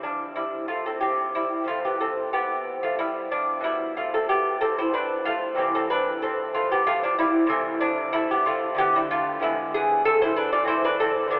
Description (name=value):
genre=classical, baroque-style dance for lute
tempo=93 BPM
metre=3/4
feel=rubato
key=C major, A minor from 7.5 s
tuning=A4 = 440 Hz
part: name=lute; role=solo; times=0.0-11.4 s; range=B2 to D5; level=-24 LUFS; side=equal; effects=none
room=wet cathedral reverb, RT60 6.7 s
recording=in a vast, echoing space, telephone sound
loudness=-24 LUFS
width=mono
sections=0.0-11.4 A section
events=none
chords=0.0 C; 1.7 Fmaj9#11/C; 3.6 G/B; 5.6 C; 8.8 Bm7b5/D; 9.4 E7/D; 10.7 Am/C